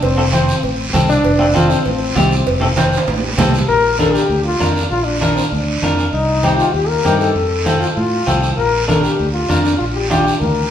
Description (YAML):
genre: latin, cumbia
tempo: 196 BPM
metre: 4/4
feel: straight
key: Bb major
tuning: A4 = 441 Hz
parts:
  - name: clear trombone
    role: second line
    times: 0.0-10.7 s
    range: C4 to Bb4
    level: -18 LUFS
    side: left 3 dB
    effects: none
  - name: fingered electric bass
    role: bass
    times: 0.0-10.7 s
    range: F1 to A2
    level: -19 LUFS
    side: equal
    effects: none
  - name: congas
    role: percussion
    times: 0.0-10.6 s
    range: none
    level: -22 LUFS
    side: right 2 dB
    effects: none
  - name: cowbell and timbales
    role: percussion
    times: 0.0-3.7 s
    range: none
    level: -22 LUFS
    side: right 5 dB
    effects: none
  - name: guiro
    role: percussion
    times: 0.0-10.7 s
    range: none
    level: -25 LUFS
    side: right 3 dB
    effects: none
  - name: electric guitar through a small old amp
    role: accompaniment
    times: 0.2-10.3 s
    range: C4 to C5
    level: -19 LUFS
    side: left 1 dB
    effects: none
room: wet stone room reverb, RT60 1.4 s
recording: band playing live in one room, lossy compression artefacts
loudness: -13 LUFS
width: side -9 dB against mid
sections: 0.0-3.7 A section; 3.7-10.7 B section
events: trombone solo 0.0-3.7, 3.7-10.7; drum fill 2.8-3.7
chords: 0.0 F; 3.7 Bb; 6.1 Cm; 7.4 F; 8.6 Bb